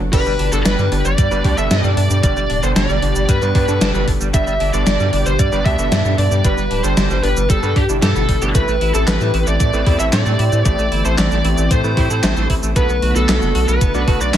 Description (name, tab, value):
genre	synthwave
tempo	114 BPM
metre	4/4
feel	straight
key	G major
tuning	A4 = 436 Hz
part	analog string pad	sustained chords	0.0-14.4 s	B2 to G4	-25 LUFS	equal	ensemble chorus, sidechain pumping
part	round analog bass	bass	0.0-14.4 s	D1 to A2	-18 LUFS	equal	sidechain pumping
part	high-gain lead guitar	melody	0.1-14.4 s	G4 to E5	-22 LUFS	equal	distortion, tape echo
part	airy dreamy lead	second line	0.1-14.4 s	G4 to E5	-25 LUFS	right 1 dB	chorus
part	clean electric guitar	riff	0.1-14.4 s	G3 to G4	-27 LUFS	right 3 dB	analog chorus, tape echo
part	bright electric grand piano	stabs	0.1-14.4 s	G2 to D5	-26 LUFS	right 2 dB	none
part	electronic kick drum	drums	0.1-14.2 s	none	-17 LUFS	equal	overdrive
part	gated 80s digital drum machine	drums	0.1-14.4 s	crash cymbal, handclaps, hi-hat, shaker, snare drum	-21 LUFS	equal	gated reverb, gated reverb snare, overdrive
room	digital ambience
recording	none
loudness	-14 LUFS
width	side -10 dB against mid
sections	0.0-14.4 A section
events	none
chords	0.1 G; 8.6 Am7; 12.8 Bm7